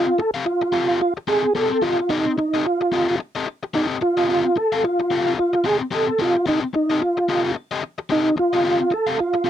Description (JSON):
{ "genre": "funk", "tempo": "110 BPM", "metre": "4/4", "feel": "swing 60% on 16ths", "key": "F mixolydian", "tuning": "A4 = 440 Hz", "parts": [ { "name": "mellow tonewheel organ", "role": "melody", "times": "0.0-9.5 s", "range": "Eb4 to A4", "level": "-18 LUFS", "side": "right 1 dB", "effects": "chorus vibrato, slow rotary speaker" }, { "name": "crunchy overdriven guitar", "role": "accompaniment", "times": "0.0-9.5 s", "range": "C4 to F5", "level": "-24 LUFS", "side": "left 5 dB", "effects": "none" } ], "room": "light reverb", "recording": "dry, close 1970s-style studio recording", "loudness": "-18 LUFS", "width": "side -10 dB against mid", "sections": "0.0-9.5 A section", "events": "none", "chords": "0.0 F9", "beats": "0.46 1.01 1.55 | 2.10 2.64 3.19 3.73 | 4.28 4.82 5.37 5.91 | 6.46 7.00 7.55 8.09 | 8.63 9.18" }